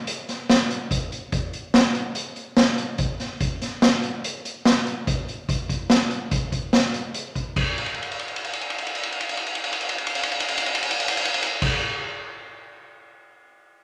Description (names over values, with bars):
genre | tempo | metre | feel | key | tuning
progressive instrumental, progressive | 144 BPM | 5/4 | straight | none | none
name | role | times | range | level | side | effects
street-band drum kit | drums | 0.1-13.2 s | crash cymbal, hi-hat, kick drum, ride cymbal, snare drum | -24 LUFS | equal | none
room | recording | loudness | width
moderate large studio reverb, RT60 1.4 s | none | -24 LUFS | mono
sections
0.0-7.6 A section; 7.6-11.7 B section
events
drum fill 7.8-11.6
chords
none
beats
0.07 0.49 0.91 | 1.32 1.74 2.15 2.57 2.98 | 3.40 3.82 4.23 4.65 5.07 | 5.48 5.90 6.31 6.73 7.15 | 7.56 7.98 8.39 8.81 9.23 | 9.64 10.06 10.48 10.89 11.31